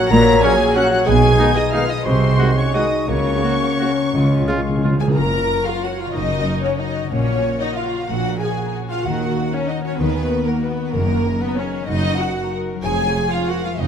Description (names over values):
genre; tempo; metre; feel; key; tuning
classical; 163-203 BPM; 3/4; rubato; F# major; A4 = 440 Hz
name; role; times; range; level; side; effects
dark studio violin section; melody; 0.0-13.9 s; F#4 to A#6; -30 LUFS; left 3 dB; none
dark studio violin section; second line; 0.0-13.9 s; A#4 to A#5; -25 LUFS; left 2 dB; none
warm clarinet; second line; 0.0-5.0 s; E#4 to C#5; -25 LUFS; right 1 dB; none
warm bassoon; accompaniment; 0.0-5.0 s; F#3 to A#3; -25 LUFS; right 2 dB; none
mellow French horn section; sustained chords; 0.0-4.8 s; B#3 to A#4; -21 LUFS; left 3 dB; none
concert harp; arpeggios; 0.0-13.9 s; E#2 to C#6; -26 LUFS; left 8 dB; none
silver concert flute; second line; 0.1-4.8 s; B#4 to A#5; -24 LUFS; left 2 dB; none
warm studio cello section; bass; 0.1-13.9 s; E#2 to D#3; -23 LUFS; right 2 dB; none
warm symphonic double bass section; bass; 0.1-13.9 s; E#1 to D#2; -23 LUFS; right 3 dB; none
warm studio viola section; accompaniment; 0.4-13.9 s; G#3 to A#4; -25 LUFS; equal; none
mellow trombone section; sustained chords; 0.4-5.0 s; C#3 to B3; -29 LUFS; right 3 dB; none
warm trumpet; stabs; 0.4-5.0 s; C#4 to F#4; -28 LUFS; right 2 dB; none
timpani; percussion; 4.1-5.1, 10.9-11.4 s; F#2 to C#3; -23 LUFS; right 1 dB; none
room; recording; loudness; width
moderate scoring stage reverb, RT60 1.6 s; none; -16 LUFS; side -8 dB against mid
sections
0.0-5.2 A section; 5.2-13.9 B section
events
timpani fill 4.1-5.2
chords
0.0 F#/A#; 1.1 G#m/B; 2.1 G#7/B#; 3.1 F#/C#; 4.1 C#; 5.2 F#; 7.1 F#/A#; 9.0 D#m; 10.9 D#m/F#; 12.8 C#/E#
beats
| 0.10 0.43 0.76 | 1.07 1.40 1.74 | 2.06 2.39 2.75 | 3.08 3.43 3.80 | 4.14 4.48 4.83 | 5.16 5.49 5.83 | 6.14 6.46 6.80 | 7.11 7.44 7.77 | 8.08 8.40 8.73 | 9.04 9.36 9.68 | 9.98 10.30 10.63 | 10.93 11.24 11.57 | 11.88 12.20 12.53 | 12.83 13.15 13.48 | 13.79